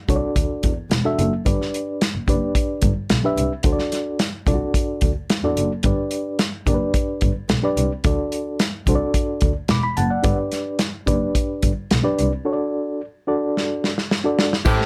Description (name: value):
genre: uptempo 1960s-style soul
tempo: 109 BPM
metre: 4/4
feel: straight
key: G major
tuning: A4 = 440 Hz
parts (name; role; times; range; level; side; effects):
- mellow reed electric piano; accompaniment; 0.1-14.9 s; D4 to D6; -25 LUFS; equal; fast tremolo
- dark double bass; bass; 0.1-14.7 s; E1 to E2; -26 LUFS; equal; none
- warm soul drum kit; drums; 0.1-14.9 s; crash cymbal, hi-hat, kick drum, snare drum; -23 LUFS; equal; none
- warm saxophone section; second line; 14.6-14.7 s; C4 to G4; -30 LUFS; equal; none
- warm baritone saxophone; riff; 14.7-14.9 s; A2; -25 LUFS; equal; none
- tambourine; percussion; 14.7-14.8 s; none; -40 LUFS; equal; none
room: light reverb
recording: none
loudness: -21 LUFS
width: mono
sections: 0.0-14.7 A section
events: drum fill 13.6-14.7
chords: 0.0 D; 1.5 G; 3.6 D; 5.8 G; 8.0 D; 10.2 G; 12.5 D